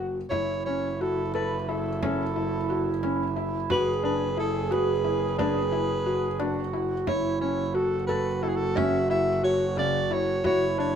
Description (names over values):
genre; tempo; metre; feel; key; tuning
contemporary instrumental, chamber music in an uneven meter; 178 BPM (eighths); 5/8; straight; F# minor; A4 = 440 Hz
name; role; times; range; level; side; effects
breathy soprano saxophone; melody; 0.0-11.0 s; F#4 to E5; -29 LUFS; equal; none
felt-muted upright piano; arpeggios; 0.0-11.0 s; C#3 to A4; -29 LUFS; left 5 dB; none
clear double bass; bass; 0.0-11.0 s; F#1; -32 LUFS; right 3 dB; none
breathy flute-like synth lead; second line; 0.3-11.0 s; E4 to G#4; -30 LUFS; right 5 dB; chorus
frame drum; percussion; 0.3-10.8 s; none; -34 LUFS; right 3 dB; none
room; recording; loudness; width
light reverb; minimal, uncompressed stereo recording; -24 LUFS; side -8 dB against mid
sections
0.3-11.0 A section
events
none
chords
0.3 F#m7; 3.7 Esus2/F#; 7.1 F#7(no3); 10.4 Esus2/F#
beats
| 0.31 0.66 1.00 1.34 1.68 | 2.02 2.35 2.69 3.02 3.36 | 3.69 4.03 4.37 4.71 5.04 | 5.38 5.72 6.06 6.39 6.73 | 7.07 7.41 7.75 8.09 8.43 | 8.76 9.10 9.44 9.77 10.11 | 10.44 10.78